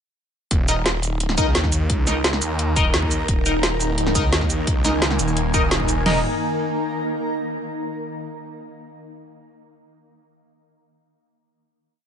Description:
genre	dark technical drum and bass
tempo	173 BPM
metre	4/4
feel	straight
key	unclear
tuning	A4 = 441 Hz
part	snarling distorted saw bass	bass	0.5-6.2 s	Eb1 to Eb2	-23 LUFS	equal	overdrive
part	drum and bass drum kit	drums	0.5-6.0 s	hi-hat, shaker, snare drum	-22 LUFS	right 1 dB	none
part	dubstep drum kit	drums	0.5-6.1 s	crash cymbal, kick drum, snare drum, toms	-22 LUFS	equal	none
part	granular cloud pad	texture	1.0-7.4 s	Eb4 to Bb5	-27 LUFS	left 1 dB	built-in reverb, sidechain pumping
part	band-passed chord stab	stabs	0.7-6.2 s	Eb4 to Eb5	-26 LUFS	left 2 dB	phaser, vintage 12-bit sampler grit, ping-pong delay
part	swarming drone	sustained chords	4.1-6.2 s	Eb3 to Eb4	-28 LUFS	equal	built-in reverb, phaser, sidechain pumping
room	light reverb, digital ambience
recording	nothing above 10.5 kHz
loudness	-18 LUFS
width	side -8 dB against mid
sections	0.5-6.1 drop; 6.1-7.4 final chord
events	drop 0.5-6.1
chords	0.5 Eb5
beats	| 0.51 0.86 1.20 1.55 | 1.90 2.25 2.59 2.94 | 3.29 3.63 3.98 4.33 | 4.67 5.02 5.37 5.71 | 6.06 6.41 6.75 7.10

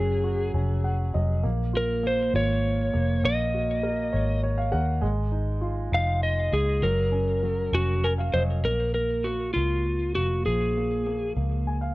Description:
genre	six-eight pop ballad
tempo	66 BPM (dotted quarters)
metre	6/8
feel	straight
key	Bb minor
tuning	A4 = 439 Hz
part	electric slide guitar	melody	0.0-11.3 s	F4 to F5	-27 LUFS	equal	ping-pong delay
part	dark grand piano	accompaniment	0.0-11.9 s	F3 to Ab5	-31 LUFS	right 2 dB	none
part	vintage muted fingered electric bass	bass	0.0-11.9 s	F1 to Eb2	-26 LUFS	equal	none
room	small room ambience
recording	worn, warbling old tape, cassette tape, warbly pitch drift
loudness	-23 LUFS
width	side -19 dB against mid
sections	0.0-8.7 A section; 8.7-11.9 B section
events	grand piano fill 0.5-1.4, 4.1-5.0, 7.7-8.7, 11.4-11.9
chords	0.0 Gbsus2; 1.4 Bbm; 3.2 Gbadd9/Bb; 5.0 Dbadd9/Ab; 6.8 Gb; 8.7 Bbm7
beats	0.53 | 1.44 2.34 | 3.24 4.14 | 5.04 5.94 | 6.84 7.74 | 8.65 9.56 | 10.46 11.36

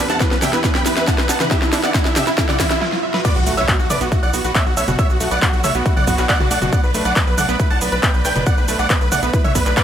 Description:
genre	uplifting trance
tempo	138 BPM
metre	4/4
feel	straight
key	B minor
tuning	A4 = 440 Hz
part	big supersaw lead	melody	0.0-9.8 s	E4 to B5	-21 LUFS	right 1 dB	sidechain pumping, dub echo
part	clear studio string section	sustained chords	0.0-9.8 s	E2 to B4	-29 LUFS	equal	sidechain pumping
part	analog pluck	arpeggios	0.0-9.8 s	B2 to E5	-25 LUFS	right 3 dB	chorus, sidechain pumping, dub echo
part	riser and impact	sound effects	0.0-5.0 s	none	-26 LUFS	equal	none
part	big-room dance drum kit	drums	0.1-9.8 s	crash cymbal, handclaps, hi-hat, shaker, snare drum, toms	-21 LUFS	equal	sidechain pumping on hats, sidechain pumping on toms, sidechain pumping on perc, sidechain pumping on cymbals
part	electronic kick drum	drums	0.2-9.8 s	none	-18 LUFS	equal	none
part	clear grand piano	second line	3.2-9.8 s	F#5 to A6	-26 LUFS	right 3 dB	sidechain pumping, dub echo
part	tight sequencer bass	bass	3.4-9.7 s	F#1 to B1	-24 LUFS	left 1 dB	sidechain pumping
room	light reverb, digital ambience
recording	none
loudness	-14 LUFS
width	side -9 dB against mid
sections	0.0-3.2 A section; 3.2-9.8 B section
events	build-up 0.0-3.2; drum fill 0.0-2.8, 2.8-3.2; riser 0.0-3.2; filter sweep on synth arpeggio sound 0.0-3.2; break 2.8-3.2; drop 3.2-9.8; impact 3.2-5.0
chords	0.0 Em; 3.2 Bm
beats	0.20 0.64 1.07 | 1.51 1.94 2.38 2.81 | 3.25 3.68 4.12 4.55 | 4.99 5.42 5.86 6.29 | 6.73 7.16 7.60 8.03 | 8.47 8.90 9.34 9.77

